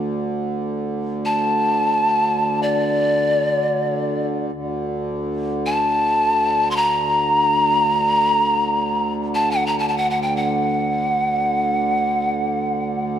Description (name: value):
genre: world meditative, free-time meditation music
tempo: free time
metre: none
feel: none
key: D major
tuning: A4 = 439 Hz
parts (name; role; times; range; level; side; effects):
- hand-pumped harmonium; drone; 0.0-13.2 s; D2 to D3; -23 LUFS; right 1 dB; stereo widening
- breathy bright pan flute; melody; 1.3-13.2 s; D5 to C6; -18 LUFS; left 1 dB; none
room: wet church reverb, RT60 2.8 s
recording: dark, warm production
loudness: -17 LUFS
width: side -9 dB against mid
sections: 0.0-4.5 A section; 4.5-13.2 A section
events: none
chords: none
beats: free time